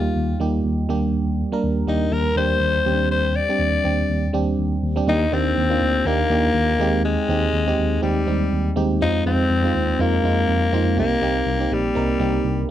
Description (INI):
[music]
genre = 1980s-style pop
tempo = 122 BPM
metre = 4/4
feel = swing 55% on 16ths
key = Eb major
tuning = A4 = 440 Hz
[part]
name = raspy alto saxophone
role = melody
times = 0.0-12.7 s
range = G3 to D5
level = -22 LUFS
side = left 4 dB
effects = slapback echo
[part]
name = FM electric piano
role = accompaniment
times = 0.0-12.7 s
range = G3 to Bb4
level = -22 LUFS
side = right 3 dB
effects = chorus
[part]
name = mellow tine electric piano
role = bass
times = 0.0-12.6 s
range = Bb1 to F2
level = -23 LUFS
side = equal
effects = medium stereo tremolo
[sound]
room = light reverb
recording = dry, close 1970s-style studio recording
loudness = -18 LUFS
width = side -12 dB against mid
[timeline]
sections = 0.0-5.1 A section; 5.1-12.7 B section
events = none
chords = 0.0 Eb; 0.9 Gm/Eb; 2.9 Csus2/Eb; 5.1 Ebmaj7; 6.8 Abmaj7/Eb; 9.0 Fm7; 11.0 Cm7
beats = 0.16 0.65 | 1.14 1.63 2.12 2.62 | 3.11 3.60 4.09 4.58 | 5.08 5.57 6.06 6.55 | 7.04 7.53 8.03 8.52 | 9.01 9.50 9.99 10.48 | 10.98 11.47 11.96 12.45